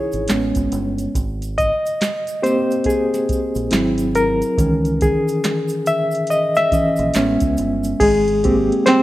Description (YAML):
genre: R&B, neo-soul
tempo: 70 BPM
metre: 4/4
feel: swing 60% on 16ths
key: Ab major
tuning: A4 = 440 Hz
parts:
  - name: barky reed electric piano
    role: accompaniment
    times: 0.0-9.0 s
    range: Eb3 to Fb5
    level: -16 LUFS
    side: equal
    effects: overdrive, fast tremolo
  - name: deep dub fingered electric bass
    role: bass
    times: 0.1-8.7 s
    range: G1 to Db2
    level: -25 LUFS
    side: right 1 dB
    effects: none
  - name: soft vintage rhythm box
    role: drums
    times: 0.1-9.0 s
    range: crash cymbal, handclaps, hi-hat, kick drum, snare drum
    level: -23 LUFS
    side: right 1 dB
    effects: none
  - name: tube shaker and finger snaps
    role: percussion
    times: 0.1-8.0 s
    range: none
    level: -36 LUFS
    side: right 3 dB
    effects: none
room: light reverb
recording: rough home demo mix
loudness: -16 LUFS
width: side -16 dB against mid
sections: 0.0-8.0 A section; 8.0-9.0 B section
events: reed electric piano solo 0.0-8.0, 8.0-9.0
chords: 0.3 Amaj7; 1.1 Abmaj7; 3.7 Abaug7; 4.6 Dbmadd9; 7.1 Amaj7; 8.0 Abmaj7